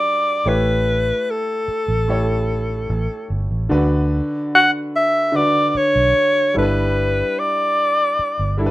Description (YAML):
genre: lush 1970s-style soul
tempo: 74 BPM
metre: 4/4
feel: straight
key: unclear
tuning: A4 = 442 Hz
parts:
  - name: bright alto saxophone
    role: melody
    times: 0.0-8.6 s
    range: A4 to F#5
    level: -17 LUFS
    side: equal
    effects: none
  - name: clear grand piano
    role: accompaniment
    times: 0.0-8.7 s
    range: D3 to C#5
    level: -23 LUFS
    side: equal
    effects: none
  - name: vintage muted fingered electric bass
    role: bass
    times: 0.5-8.7 s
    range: G1 to D2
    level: -20 LUFS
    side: right 1 dB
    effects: none
room: light reverb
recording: rough home demo mix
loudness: -16 LUFS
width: side -17 dB against mid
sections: 0.0-8.7 A section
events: none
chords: 0.5 A7; 3.7 D6; 6.6 G6